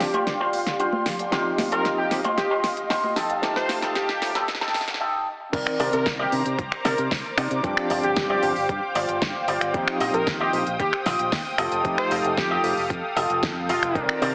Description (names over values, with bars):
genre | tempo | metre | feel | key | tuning
nu-disco, nu disco | 114 BPM | 4/4 | straight | unclear | A4 = 444 Hz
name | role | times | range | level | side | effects
wide unison lead | melody | 0.0-14.0 s | F4 to C5 | -27 LUFS | equal | cassette tape, tape echo
overdriven tine electric piano | accompaniment | 0.0-14.3 s | Eb3 to D5 | -29 LUFS | equal | fast tremolo, sidechain pumping
lush unison pad | sustained chords | 0.0-14.3 s | G4 to Eb6 | -29 LUFS | equal | chorus, sidechain pumping
fingered electric bass with an envelope filter | bass | 0.0-14.3 s | F1 to C3 | -33 LUFS | equal | tube saturation, high-pass filter
pop drum kit | drums | 0.0-14.3 s | crash cymbal, finger snaps, hi-hat, snare drum | -28 LUFS | equal | none
electric guitar with an envelope filter | riff | 0.1-14.3 s | Eb4 to Eb5 | -26 LUFS | equal | lush chorus, tape echo
congas | percussion | 0.1-4.5 s | none | -34 LUFS | equal | none
electronic kick drum | drums | 5.5-14.1 s | none | -31 LUFS | equal | overdrive
room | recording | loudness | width
moderate echo chamber reverb, RT60 1.5 s, digital ambience | heavily compressed radio sound, multiband compression, high-pass filter, AM radio sound | -21 LUFS | side -38 dB against mid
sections
0.0-5.5 A section; 5.5-14.3 B section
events
build-up 0.0-5.5; drum fill 0.0-5.0; filter sweep on clean electric guitar 0.0-5.5; filter sweep 0.0-5.5; drop 5.5-14.3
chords
0.0 G7sus4; 1.3 Eb69; 3.2 F9; 5.5 Cm9; 7.6 G7sus4; 9.7 Eb69; 11.6 F9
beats
0.27 0.80 | 1.32 1.85 2.38 2.90 | 3.43 3.96 4.48 5.01 | 5.53 6.06 6.59 7.11 | 7.64 8.17 8.69 9.22 | 9.74 10.27 10.80 11.32 | 11.85 12.38 12.90 13.43 | 13.96